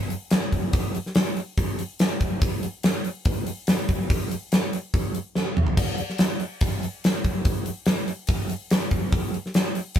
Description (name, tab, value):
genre	rock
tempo	143 BPM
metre	4/4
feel	straight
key	none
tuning	none
part	gated 80s drum kit	drums	0.1-10.0 s	crash cymbal, hi-hat, kick drum, snare drum, toms	-22 LUFS	equal	none
room	light reverb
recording	band playing live in one room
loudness	-22 LUFS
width	side -10 dB against mid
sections	0.0-10.0 A section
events	drum fill 5.4-5.8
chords	none